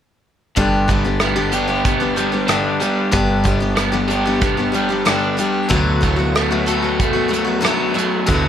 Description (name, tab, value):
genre	folk rock and heartland rock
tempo	93 BPM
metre	4/4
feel	straight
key	unclear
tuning	A4 = 440 Hz
part	picked steel-string acoustic guitar	accompaniment	0.6-8.5 s	G2 to G4	-19 LUFS	left 4 dB	plate reverb
part	crunchy overdriven guitar	riff	0.6-8.5 s	G2 to A4	-19 LUFS	right 2 dB	none
part	fingered electric bass	bass	0.6-8.5 s	G1 to D2	-24 LUFS	right 1 dB	none
part	soft brush drum kit	drums	0.6-8.4 s	hi-hat, kick drum, rim click	-21 LUFS	right 1 dB	none
room	light reverb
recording	none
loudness	-15 LUFS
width	side -9 dB against mid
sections	0.6-8.5 A section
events	none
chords	0.6 G; 5.7 D6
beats	| 0.56 1.21 1.85 2.49 | 3.13 3.77 4.42 5.06 | 5.70 6.35 6.99 7.64 | 8.28